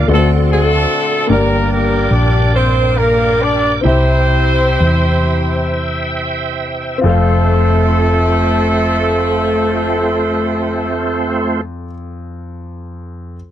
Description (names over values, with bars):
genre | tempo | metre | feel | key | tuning
slow gospel | 32-50 BPM (dotted quarters) | 6/8 | straight | F major | A4 = 437 Hz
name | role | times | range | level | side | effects
clear horn section | melody | 0.0-11.6 s | A3 to D5 | -16 LUFS | equal | none
clear concert grand piano | accompaniment | 0.0-13.4 s | F2 to F5 | -19 LUFS | left 2 dB | none
bright tonewheel organ | sustained chords | 0.0-11.6 s | A3 to E6 | -20 LUFS | right 3 dB | fast rotary speaker, chorus vibrato
hollow-body short-scale fingered electric bass | bass | 0.0-11.9 s | F1 to E2 | -16 LUFS | equal | none
room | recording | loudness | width
light reverb | dry, close 1970s-style studio recording, lossy compression artefacts | -12 LUFS | side -11 dB against mid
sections
0.0-7.0 A section; 7.0-10.8 B section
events
slowing down 1.3-7.0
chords
0.1 D7; 1.3 Gm; 3.8 C; 7.0 F